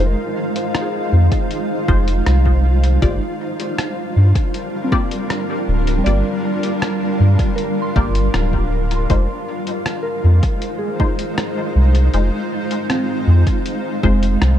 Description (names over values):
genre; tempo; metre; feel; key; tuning
ambient dub; 79 BPM; 4/4; straight; F dorian; A4 = 439 Hz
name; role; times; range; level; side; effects
granular cloud pad; sustained chords; 0.0-14.6 s; G3 to F5; -22 LUFS; right 1 dB; built-in reverb
soft synth bell; arpeggios; 0.0-14.6 s; G3 to C6; -26 LUFS; equal; chorus, tape echo
filtered dub chord stab; stabs; 0.0-14.3 s; Ab3 to D5; -26 LUFS; left 4 dB; phaser, dub echo
soft dub sub bass; bass; 0.0-14.6 s; D1 to G2; -14 LUFS; equal; none
lo-fi sampler-style drum kit; drums; 0.6-14.6 s; hi-hat, rim click; -27 LUFS; left 1 dB; small room ambience, dub echo
electronic kick drum; drums; 1.3-14.2 s; none; -19 LUFS; equal; overdrive, small room ambience
room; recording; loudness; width
light reverb; dark, warm production; -15 LUFS; side -11 dB against mid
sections
0.0-14.6 A section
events
none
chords
0.0 Fm7; 3.0 Gm7; 9.1 Fm7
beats
0.74 1.50 2.26 | 3.02 3.78 4.54 5.30 | 6.06 6.82 7.58 8.34 | 9.10 9.86 10.62 11.38 | 12.14 12.90 13.66 14.42